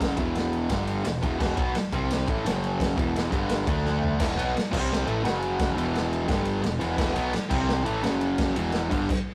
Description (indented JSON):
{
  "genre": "garage rock duo or trio",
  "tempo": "172 BPM",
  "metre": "4/4",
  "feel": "straight",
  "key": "E minor",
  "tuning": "A4 = 440 Hz",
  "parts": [
    { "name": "fuzz guitar", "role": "riff", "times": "0.0-9.1 s", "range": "E2 to D4", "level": "-28 LUFS", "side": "equal", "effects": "distortion" },
    { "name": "growling picked electric bass", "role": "bass", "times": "0.0-9.1 s", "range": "E1 to D2", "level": "-34 LUFS", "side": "equal", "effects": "overdrive" },
    { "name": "raw garage drum kit", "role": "drums", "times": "0.0-9.2 s", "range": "crash cymbal, kick drum, ride cymbal, snare drum, toms", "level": "-31 LUFS", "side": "equal", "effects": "none" }
  ],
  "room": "light reverb",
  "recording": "rough rehearsal-room recording, tube saturation",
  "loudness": "-26 LUFS",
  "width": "mono",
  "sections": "0.0-4.2 A section; 4.2-9.3 B section",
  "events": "drum fill 3.9-4.2",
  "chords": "0.2 E5; 0.7 G5; 1.1 E5; 1.9 C5; 2.3 A5; 2.5 F#5; 3.0 E5; 3.3 G5; 3.7 D5; 4.2 E5; 4.7 C5; 5.1 A5; 5.2 F#5; 5.8 E5; 6.3 G5; 6.6 E5; 7.5 C5; 7.9 A5; 8.0 F#5; 8.6 E5; 8.9 G5"
}